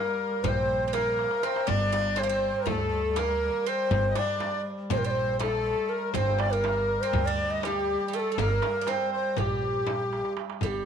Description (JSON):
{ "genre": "Turkish makam ensemble", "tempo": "242 BPM (eighths)", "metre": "9/8", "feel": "straight", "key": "G makam ussak", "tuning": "A4 = 445 Hz", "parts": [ { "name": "breathy mellow ney", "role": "melody", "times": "0.0-10.9 s", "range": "G4 to Eb5", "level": "-29 LUFS", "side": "equal", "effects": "none" }, { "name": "Greek bouzouki", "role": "second line", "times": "0.0-10.9 s", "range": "G3 to D4", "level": "-34 LUFS", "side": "right 12 dB", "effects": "none" }, { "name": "accordion", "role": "second line", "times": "0.0-10.3 s", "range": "G4 to Eb5", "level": "-33 LUFS", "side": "left 11 dB", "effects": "light tremolo tuning" }, { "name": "mellow duduk", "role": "drone", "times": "0.0-10.7 s", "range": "G3", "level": "-38 LUFS", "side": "equal", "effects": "none" }, { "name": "upright bass", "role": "bass", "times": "0.4-10.9 s", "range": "G1 to D2", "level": "-31 LUFS", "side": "equal", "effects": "none" }, { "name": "darbuka", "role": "percussion", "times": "0.4-10.7 s", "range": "none", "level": "-35 LUFS", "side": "right 6 dB", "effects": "none" }, { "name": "frame drum", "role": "percussion", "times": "0.4-10.7 s", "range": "none", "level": "-36 LUFS", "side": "left 9 dB", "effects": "none" } ], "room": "light reverb", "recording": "1960s-style stereo with parts hard left and right", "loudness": "-25 LUFS", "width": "side -8 dB against mid", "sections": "0.0-10.6 A section", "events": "drum fill 1.2-1.7, 10.1-10.6", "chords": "none", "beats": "0.19 0.44 0.69 0.93 1.18 1.43 | 1.68 1.93 2.17 2.42 2.67 2.92 3.17 3.42 3.67 | 3.91 4.16 4.41 4.66 4.91 5.16 5.41 5.65 5.90 | 6.15 6.40 6.65 6.89 7.14 7.39 7.64 7.89 8.14 | 8.38 8.63 8.88 9.13 9.38 9.63 9.88 10.12 10.37 | 10.62" }